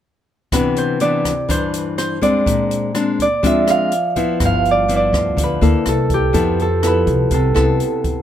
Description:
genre	bossa nova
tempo	124 BPM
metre	4/4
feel	straight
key	C major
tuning	A4 = 440 Hz
part	concert harp	melody	0.5-8.2 s	G4 to F5	-18 LUFS	right 3 dB	none
part	nylon-string guitar	accompaniment	0.5-8.2 s	G2 to A4	-19 LUFS	left 4 dB	none
part	open jazz drum kit	drums	0.5-8.2 s	hi-hat, kick drum, rim click	-23 LUFS	equal	none
part	upright bass	bass	4.4-7.8 s	G1 to F2	-18 LUFS	equal	none
room	little or no reverb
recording	none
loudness	-14 LUFS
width	side -10 dB against mid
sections	0.5-4.4 A section; 4.4-8.2 B section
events	none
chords	0.5 Cmaj9; 2.5 Bb9; 4.4 G13; 5.9 C6; 6.3 Fmaj7#11

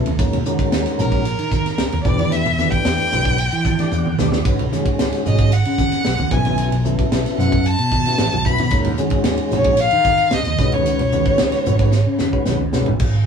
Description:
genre	electric jazz fusion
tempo	112 BPM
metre	4/4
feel	straight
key	unclear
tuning	A4 = 440 Hz
part	mellow tonewheel organ	accompaniment	0.0-12.9 s	C#3 to A5	-23 LUFS	left 4 dB	overdrive, fast rotary speaker
part	fretless electric bass	bass	0.0-13.2 s	G#1 to E3	-20 LUFS	right 1 dB	none
part	tight funk drum kit	drums	0.1-13.1 s	crash cymbal, hi-hat, kick drum, ride cymbal, snare drum, toms	-22 LUFS	right 1 dB	none
part	congas	percussion	0.1-13.0 s	none	-24 LUFS	right 3 dB	none
part	rich violin	melody	1.0-12.5 s	A#4 to B5	-20 LUFS	left 1 dB	none
room	moderate studio reverb, RT60 0.9 s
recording	band playing live in one room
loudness	-15 LUFS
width	side -6 dB against mid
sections	0.0-13.0 A section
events	tonewheel organ fill 3.4-4.5; drum fill 3.9-4.5, 11.9-13.0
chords	0.2 D#m7; 2.1 Em7; 4.5 C#9sus4; 6.3 B9sus4; 8.7 D#m11; 10.6 C#9sus4

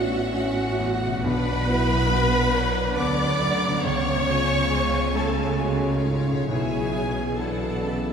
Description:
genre	cinematic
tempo	68 BPM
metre	3/4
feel	rubato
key	unclear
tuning	A4 = 440 Hz
part	rich studio violin section	melody	0.0-8.1 s	F#5 to D6	-32 LUFS	left 2 dB	none
part	concert flute	second line	0.0-8.1 s	F#5 to D6	-33 LUFS	left 1 dB	none
part	mellow clarinet	second line	0.0-8.1 s	B3 to F#4	-32 LUFS	left 3 dB	none
part	warm studio violin section	second line	0.0-8.1 s	B4 to G#5	-35 LUFS	left 1 dB	none
part	clear baby grand piano	accompaniment	0.0-8.1 s	A1 to C#5	-30 LUFS	left 1 dB	none
part	warm studio viola section	accompaniment	0.0-8.1 s	F#4 to D5	-27 LUFS	right 2 dB	none
part	warm French horn section	sustained chords	0.0-8.1 s	C#3 to C#5	-34 LUFS	left 2 dB	none
part	concert harp	arpeggios	0.0-8.1 s	A2 to E#5	-35 LUFS	left 4 dB	none
part	rich studio cello section	bass	0.0-8.1 s	A2 to D3	-30 LUFS	right 2 dB	none
part	warm studio double bass section	bass	0.0-8.1 s	A1 to D2	-28 LUFS	right 2 dB	none
room	wet church reverb, RT60 3.2 s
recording	none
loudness	-21 LUFS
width	side -7 dB against mid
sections	0.0-8.1 A section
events	none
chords	0.0 F#m7/A; 1.2 Bm; 3.9 C#; 6.5 E/B

